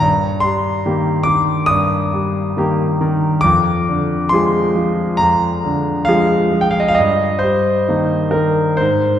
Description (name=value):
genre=classical, romantic nocturne for solo piano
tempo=62-73 BPM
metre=4/4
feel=rubato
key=Eb major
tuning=A4 = 437 Hz
part: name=clear concert grand piano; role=solo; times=0.0-9.2 s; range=F2 to Eb6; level=-14 LUFS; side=equal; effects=none
room=wet scoring stage reverb, RT60 1.9 s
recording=heard from further back in the room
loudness=-14 LUFS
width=side -10 dB against mid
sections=0.0-9.2 A section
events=none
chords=0.0 Eb/G; 3.4 Ddim/F; 7.0 Eb/G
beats=| 0.03 0.87 1.71 2.58 | 3.44 4.32 5.20 6.08 | 6.96 7.87 8.80